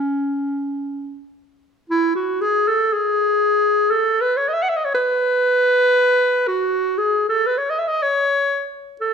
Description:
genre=classical, free, expressive piece for unaccompanied clarinet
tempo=36-62 BPM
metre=3/4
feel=rubato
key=C# minor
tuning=A4 = 442 Hz
part: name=bright clarinet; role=solo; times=0.0-9.1 s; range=C#4 to F#5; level=-17 LUFS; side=equal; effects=none
room=moderate recital hall reverb, RT60 1.3 s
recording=minimal, uncompressed stereo recording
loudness=-16 LUFS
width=side -6 dB against mid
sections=0.0-1.9 A section; 1.9-9.1 A section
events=none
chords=none

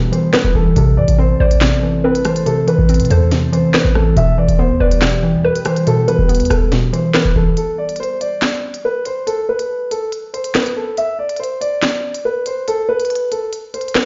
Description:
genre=hip hop, drill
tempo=141 BPM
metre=4/4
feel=half-time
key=unclear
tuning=A4 = 439 Hz
part: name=hollow square pluck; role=accompaniment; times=0.0-7.6 s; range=B2 to C5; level=-19 LUFS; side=equal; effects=chorus, low-pass filter
part: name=glassy FM pad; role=sustained chords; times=0.0-7.5 s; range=E3 to A4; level=-26 LUFS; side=equal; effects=ensemble chorus, built-in reverb
part: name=short 808-style bass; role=bass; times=0.0-7.6 s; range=E1 to C3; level=-18 LUFS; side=equal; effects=none
part: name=dark concert grand piano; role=melody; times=0.1-14.1 s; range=A4 to E5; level=-21 LUFS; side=equal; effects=low-pass filter
part: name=drill drum kit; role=drums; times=0.1-14.1 s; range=handclaps, hi-hat, rim click, snare drum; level=-22 LUFS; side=equal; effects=none
room=digital ambience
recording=played on a big sound system in a bare room, large studio reverb, nothing above 7.5 kHz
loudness=-16 LUFS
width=mono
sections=0.0-7.6 A section; 7.6-14.1 B section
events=break 7.6-14.1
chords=0.0 Em; 0.8 Am; 4.2 Em; 7.6 N.C.

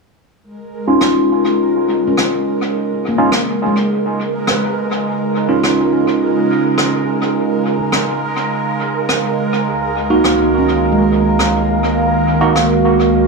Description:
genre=ambient dub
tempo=104 BPM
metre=4/4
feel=straight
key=Db mixolydian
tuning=A4 = 440 Hz
part: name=warbly tape-like pad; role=sustained chords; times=1.9-13.3 s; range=Db2 to F5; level=-19 LUFS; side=right 1 dB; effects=chorus, built-in reverb
part: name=bubbling stepped-filter texture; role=texture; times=0.4-13.3 s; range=Ab3 to Bb4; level=-20 LUFS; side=right 3 dB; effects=chorus, built-in reverb
part: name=barky tine electric piano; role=stabs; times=0.9-12.5 s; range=Bb3 to Gb4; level=-16 LUFS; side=right 2 dB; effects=phaser, low-pass filter, dub echo
part: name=rim click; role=drums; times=1.0-12.7 s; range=none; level=-22 LUFS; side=equal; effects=dub echo
part: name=handpan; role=arpeggios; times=2.1-6.6, 10.3-13.0 s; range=Ab3 to Cb5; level=-21 LUFS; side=left 1 dB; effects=low-pass filter, analog delay
room=moderate spring reverb, RT60 1.6 s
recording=echo-heavy mix, studio reverb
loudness=-13 LUFS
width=side -3 dB against mid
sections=0.4-13.3 A section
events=fade-in on ambient pad 0.4-13.3; filter sweep on tine electric piano 0.4-13.3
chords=0.4 Dbadd9; 9.7 Ebm/Db

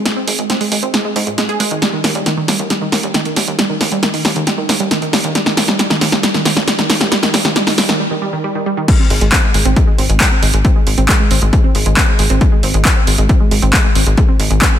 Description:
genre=uplifting trance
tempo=136 BPM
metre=4/4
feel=straight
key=Ab major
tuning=A4 = 444 Hz
part: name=tight sequencer bass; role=bass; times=0.0-14.6 s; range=Eb1 to Ab2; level=-17 LUFS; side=left 1 dB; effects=sidechain pumping, high-pass filter
part: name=wide unison pluck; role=arpeggios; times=0.1-14.8 s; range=Ab2 to Ab4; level=-19 LUFS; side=right 3 dB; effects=sidechain pumping, ping-pong delay
part: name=punchy analog drum machine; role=drums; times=0.1-14.7 s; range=crash cymbal, handclaps, hi-hat, snare drum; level=-15 LUFS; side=equal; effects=overdrive
part: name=electronic kick drum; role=drums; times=8.9-14.7 s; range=none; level=-13 LUFS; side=left 1 dB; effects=overdrive
room=light reverb, digital ambience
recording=none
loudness=-11 LUFS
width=side -10 dB against mid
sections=0.0-8.9 A section; 8.9-14.8 B section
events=build-up 0.0-8.9; drum fill 0.0-8.0; break 8.0-8.9; drop 8.9-14.8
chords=0.0 Ab5; 1.8 Eb; 8.9 Ab5

